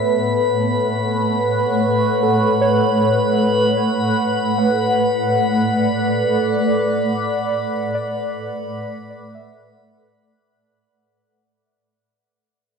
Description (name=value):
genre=ambient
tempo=free time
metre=none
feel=none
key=unclear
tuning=A4 = 438 Hz
part: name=shimmering ambient pad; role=sustained chords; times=0.0-10.5 s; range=A2 to F#5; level=-17 LUFS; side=equal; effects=chorus, built-in reverb, phaser
part: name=muted felt-like synth keys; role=arpeggios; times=0.0-10.6 s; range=A4 to F#5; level=-26 LUFS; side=right 1 dB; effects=chorus, tape echo
part: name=drifting glass-harmonics texture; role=texture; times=0.0-10.5 s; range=B5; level=-27 LUFS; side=right 2 dB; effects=chorus, built-in reverb
room=wet plate reverb, RT60 2.9 s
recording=dreamy mix soaked in reverb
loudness=-16 LUFS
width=side -6 dB against mid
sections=0.0-10.5 A section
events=fade-out 6.4-10.5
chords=0.0 A69; 4.3 D69/A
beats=free time